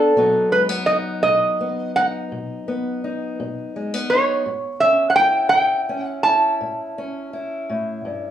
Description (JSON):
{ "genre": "acoustic country blues, solo or duo", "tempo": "56 BPM (dotted quarters)", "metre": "12/8", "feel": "straight", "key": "unclear", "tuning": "A4 = 440 Hz", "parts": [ { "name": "metal-body resonator slide guitar", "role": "melody", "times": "0.0-6.6 s", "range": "A4 to A5", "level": "-16 LUFS", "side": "right 1 dB", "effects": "none" }, { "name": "fingerpicked steel-string acoustic guitar", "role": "accompaniment", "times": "0.0-8.3 s", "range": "G2 to E4", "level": "-25 LUFS", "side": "left 2 dB", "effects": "none" } ], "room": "moderate large studio reverb, RT60 0.8 s", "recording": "band playing live in one room, small room reverb", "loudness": "-18 LUFS", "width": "side -10 dB against mid", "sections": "0.0-8.3 A section", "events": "none", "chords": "0.1 B; 4.5 A7" }